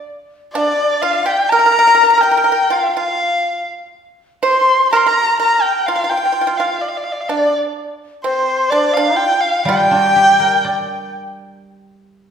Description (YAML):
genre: chinese traditional, Chinese chamber ensemble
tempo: 62 BPM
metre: 2/4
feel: rubato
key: G yu mode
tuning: A4 = 440 Hz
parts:
  - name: warm erhu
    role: melody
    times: 0.5-11.1 s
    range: C5 to C6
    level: -16 LUFS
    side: equal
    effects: none
  - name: mellow dizi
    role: second line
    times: 0.5-11.1 s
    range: C5 to C6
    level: -18 LUFS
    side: left 4 dB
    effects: none
  - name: pipa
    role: second line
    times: 0.6-11.1 s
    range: C4 to C5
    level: -18 LUFS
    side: right 2 dB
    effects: none
  - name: guzheng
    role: accompaniment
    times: 9.7-12.3 s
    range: G3 to D5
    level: -22 LUFS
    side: right 1 dB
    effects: none
room: wet recital hall reverb, RT60 1.4 s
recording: recorded in a church or concert hall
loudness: -12 LUFS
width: side -7 dB against mid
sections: 0.0-11.6 A section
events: none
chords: none